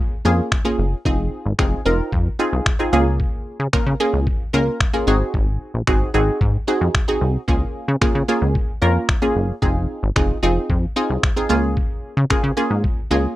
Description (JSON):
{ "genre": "dance-pop", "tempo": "112 BPM", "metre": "4/4", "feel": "straight", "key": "Db major", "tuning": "A4 = 440 Hz", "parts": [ { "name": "punchy chord stab", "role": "accompaniment", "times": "0.0-13.4 s", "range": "Bb3 to Bb4", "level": "-20 LUFS", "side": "right 1 dB", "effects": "chorus, sidechain pumping" }, { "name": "plucky analog bass", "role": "bass", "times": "0.2-13.3 s", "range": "F1 to Db3", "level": "-19 LUFS", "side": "equal", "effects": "sidechain pumping" }, { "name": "trip hop sampler-style drum kit", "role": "drums", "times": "0.5-13.0 s", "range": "finger snaps, kick drum", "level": "-20 LUFS", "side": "equal", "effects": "none" } ], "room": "little or no reverb", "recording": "rough home demo mix", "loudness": "-17 LUFS", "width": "side -16 dB against mid", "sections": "0.0-13.4 A section", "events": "none", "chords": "0.0 Db6; 1.1 Fm7; 2.9 Db6; 5.1 Ab7; 7.5 Db6; 9.6 Fm7; 11.5 Db6", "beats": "0.52 | 1.05 1.59 2.13 2.66 | 3.20 3.73 4.27 4.80 | 5.34 5.88 6.41 6.95 | 7.48 8.02 8.55 9.09 | 9.63 10.16 10.70 11.23 | 11.77 12.30 12.84" }